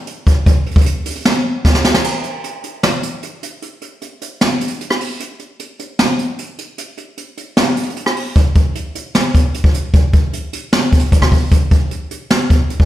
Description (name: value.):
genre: hip hop.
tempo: 152 BPM.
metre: 4/4.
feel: half-time.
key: none.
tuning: none.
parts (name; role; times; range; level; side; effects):
jazz brush drum kit; drums; 0.1-12.9 s; crash cymbal, hi-hat, kick drum, rim click, snare drum; -13 LUFS; equal; none.
room: light reverb.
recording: played on a big sound system in a bare room, stone room reverb.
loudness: -13 LUFS.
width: side -13 dB against mid.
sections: 0.0-2.0 A section; 2.0-12.9 B section.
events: drum fill 1.6-2.0; break 2.0-8.4.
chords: none.